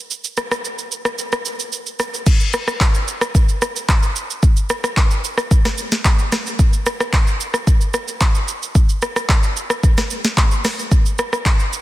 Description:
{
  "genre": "amapiano",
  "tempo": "111 BPM",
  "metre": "4/4",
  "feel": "straight",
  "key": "none",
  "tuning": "none",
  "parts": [
    { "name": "afro-pop drum kit", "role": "drums", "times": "0.1-11.8 s", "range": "crash cymbal, handclaps, hi-hat, kick drum, rim click, shaker, snare drum", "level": "-15 LUFS", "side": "equal", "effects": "soft clipping on snare" }
  ],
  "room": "light reverb, digital ambience",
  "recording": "dense, heavily limited modern master",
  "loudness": "-15 LUFS",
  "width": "side -16 dB against mid",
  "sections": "0.0-2.3 A section; 2.3-11.8 B section",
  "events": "kick muted 1.2-2.3; drop 2.3-11.8",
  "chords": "none",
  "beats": "| 0.10 0.64 1.18 1.72 | 2.27 2.81 3.35 3.89 | 4.43 4.97 5.51 6.05 | 6.59 7.13 7.67 8.21 | 8.75 9.29 9.83 10.37 | 10.91 11.45"
}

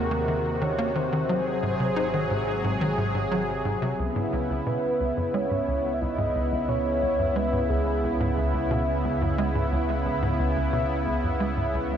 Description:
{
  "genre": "ambient, sequencer-driven space music",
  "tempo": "89 BPM",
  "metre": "4/4",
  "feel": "straight",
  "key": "C# minor from 4.0 s",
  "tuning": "A4 = 440 Hz",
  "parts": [
    { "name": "soft octave-layered synth lead", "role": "melody", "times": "0.0-8.3 s", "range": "G#4 to E5", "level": "-29 LUFS", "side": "equal", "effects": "chorus, tape echo" },
    { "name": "lush unison pad", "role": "sustained chords", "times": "0.0-12.0 s", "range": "C3 to Ab4", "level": "-27 LUFS", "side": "equal", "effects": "chorus" },
    { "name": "tight sequencer bass", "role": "riff", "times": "0.0-11.9 s", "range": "C#2 to Eb4", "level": "-29 LUFS", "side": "equal", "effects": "analog chorus, tape echo" },
    { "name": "analog drone", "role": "bass", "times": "0.0-12.0 s", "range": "Ab1 to Eb2", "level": "-31 LUFS", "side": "equal", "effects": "chorus" }
  ],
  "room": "wet lush hall reverb, RT60 2.8 s",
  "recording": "dreamy mix soaked in reverb, cassette tape",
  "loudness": "-23 LUFS",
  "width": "side -9 dB against mid",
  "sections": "0.0-4.0 A section; 4.0-12.0 B section",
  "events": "filter sweep on analog synth bass 0.0-4.0",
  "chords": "0.0 Ebm7; 1.3 Ab7; 4.0 C#m7",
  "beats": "0.62 | 1.29 1.97 2.64 3.31 | 3.99 4.66 5.34 6.01 | 6.68 7.36 8.03 8.71 | 9.38 10.06 10.73 11.40"
}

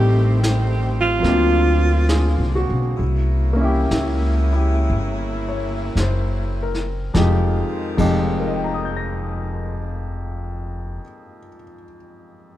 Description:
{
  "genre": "jazz ballad",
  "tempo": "48-76 BPM",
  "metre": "4/4",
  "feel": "swing 67% on 8ths",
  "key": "F minor",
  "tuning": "A4 = 439 Hz",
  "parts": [
    { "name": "breathy alto saxophone", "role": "melody", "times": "0.0-2.7 s", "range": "F4 to G4", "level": "-20 LUFS", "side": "right 3 dB", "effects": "none" },
    { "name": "clear baby grand piano", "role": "accompaniment", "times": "0.0-12.6 s", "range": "F2 to Bb6", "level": "-24 LUFS", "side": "left 1 dB", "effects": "none" },
    { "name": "clear saxophone section", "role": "sustained chords", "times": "0.0-10.2 s", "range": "Db3 to G4", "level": "-29 LUFS", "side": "right 1 dB", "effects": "none" },
    { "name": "upright bass", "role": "bass", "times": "0.0-11.0 s", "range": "F1 to D2", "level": "-20 LUFS", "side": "equal", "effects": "none" },
    { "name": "vintage brush drum kit", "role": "drums", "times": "0.4-8.2 s", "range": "brushed snare drum, crash cymbal, hi-hat, kick drum, snare drum", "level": "-27 LUFS", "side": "equal", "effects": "none" }
  ],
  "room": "light reverb",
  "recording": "dark, warm production",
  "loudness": "-18 LUFS",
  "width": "side -13 dB against mid",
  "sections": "0.0-3.0 A section; 3.0-7.1 B section; 7.1-12.1 C section",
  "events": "slowing down 0.0-7.1",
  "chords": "0.0 Am7b5; 1.2 D7alt; 3.0 C7b9; 7.1 Fm7",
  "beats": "0.43 1.25 2.10 | 2.98 3.90 4.89 5.96 | 7.14 8.39 9.63 10.88"
}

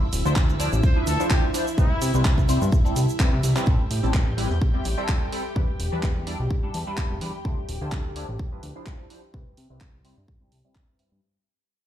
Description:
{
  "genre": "filtered disco house",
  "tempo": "127 BPM",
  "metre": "4/4",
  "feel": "swing 54% on 16ths",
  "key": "A minor",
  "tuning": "A4 = 441 Hz",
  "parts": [
    { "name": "funky polysynth comp", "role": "accompaniment", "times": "0.0-11.1 s", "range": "F3 to D5", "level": "-30 LUFS", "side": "equal", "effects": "chorus, phaser, sidechain pumping, low-pass filter" },
    { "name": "string machine, full ensemble", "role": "sustained chords", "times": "0.0-11.2 s", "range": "E4 to G5", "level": "-33 LUFS", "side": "equal", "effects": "ensemble chorus, sidechain pumping, low-pass filter" },
    { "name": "fat analog bass", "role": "bass", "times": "0.1-11.2 s", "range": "D1 to C3", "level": "-25 LUFS", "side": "equal", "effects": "sidechain pumping, low-pass filter" },
    { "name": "house drum kit", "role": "drums", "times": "0.1-11.1 s", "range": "handclaps, hi-hat, shaker", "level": "-32 LUFS", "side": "right 1 dB", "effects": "sidechain pumping on perc, sidechain pumping on hats" },
    { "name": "egg shaker", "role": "percussion", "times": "0.1-7.4 s", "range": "none", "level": "-42 LUFS", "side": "right 8 dB", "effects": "none" },
    { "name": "electronic kick drum", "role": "drums", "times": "0.4-10.9 s", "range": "none", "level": "-22 LUFS", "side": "equal", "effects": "none" },
    { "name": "bright trumpet section", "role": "melody", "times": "0.8-2.1 s", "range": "E4 to C5", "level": "-32 LUFS", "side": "left 3 dB", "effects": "sidechain pumping, low-pass filter, ping-pong delay" }
  ],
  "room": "digital ambience",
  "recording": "played on a big sound system in a bare room, large studio reverb",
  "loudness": "-21 LUFS",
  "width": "side -11 dB against mid",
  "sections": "0.0-3.7 A section; 3.7-11.2 B section",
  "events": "drop 0.0-3.7; drum fill 3.2-3.7; fade-out 3.7-11.2; filter sweep 3.7-11.2",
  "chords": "0.0 Dm9; 1.8 Cmaj7; 3.7 Am7; 5.6 Em7; 7.4 Dm9; 9.3 Cmaj7",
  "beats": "0.36 0.83 1.31 | 1.78 2.25 2.73 3.20 | 3.67 4.14 4.61 5.09 | 5.56 6.03 6.50 6.98 | 7.45 7.92 8.39 8.87 | 9.34 9.81 10.28 10.76"
}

